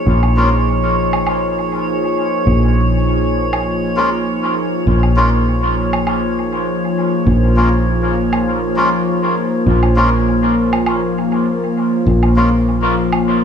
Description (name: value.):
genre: ambient dub.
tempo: 100 BPM.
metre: 4/4.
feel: swing 55% on 16ths.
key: Bb minor.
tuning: A4 = 440 Hz.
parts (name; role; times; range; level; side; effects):
warm analog pad; sustained chords; 0.0-13.4 s; F3 to Ab4; -17 LUFS; equal; chorus.
fingered electric bass; bass; 0.0-13.4 s; Bb1; -16 LUFS; equal; none.
drifting glass-harmonics texture; texture; 0.0-13.4 s; Db5; -23 LUFS; left 1 dB; chorus, built-in reverb.
woodblock; drums; 0.2-13.2 s; none; -25 LUFS; right 3 dB; overdrive, low-pass filter on perc, dub echo.
melodica; stabs; 0.4-12.5 s; Ab3 to F4; -20 LUFS; equal; dub echo.
room: moderate echo chamber reverb, RT60 1.7 s, digital ambience.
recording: small room ambience.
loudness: -13 LUFS.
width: side -7 dB against mid.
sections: 0.0-13.4 A section.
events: none.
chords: 0.0 Bbm7.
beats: | 0.07 0.67 1.26 1.86 | 2.46 3.06 3.67 4.26 | 4.87 5.46 6.07 6.67 | 7.26 7.87 8.46 9.06 | 9.66 10.27 10.87 11.46 | 12.06 12.66 13.27.